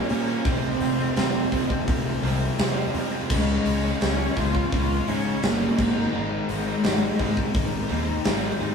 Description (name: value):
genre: quiet-loud alternative rock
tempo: 85 BPM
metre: 4/4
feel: straight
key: unclear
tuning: A4 = 440 Hz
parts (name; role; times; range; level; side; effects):
- dark cello; melody; 0.0-8.3 s; Ab3 to F4; -27 LUFS; right 1 dB; none
- fuzz guitar; riff; 0.0-8.7 s; F2 to Eb4; -30 LUFS; left 7 dB; distortion
- fuzz guitar; riff; 0.0-8.6 s; F2 to Db4; -33 LUFS; right 1 dB; none
- overdriven electric guitar; riff; 0.0-8.7 s; F2 to Eb4; -32 LUFS; right 7 dB; none
- fuzz picked electric bass; bass; 0.1-8.7 s; F1 to Bb2; -28 LUFS; equal; overdrive
- huge arena drum kit; drums; 0.1-8.7 s; crash cymbal, hi-hat, kick drum, snare drum; -26 LUFS; equal; none
room: light reverb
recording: band playing live in one room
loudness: -21 LUFS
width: side -6 dB against mid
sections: 0.0-8.7 A section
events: none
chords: 0.5 Fm; 3.3 Db; 5.8 Ab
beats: | 0.46 1.17 1.88 2.59 | 3.30 4.01 4.72 5.43 | 6.14 6.84 7.55 8.26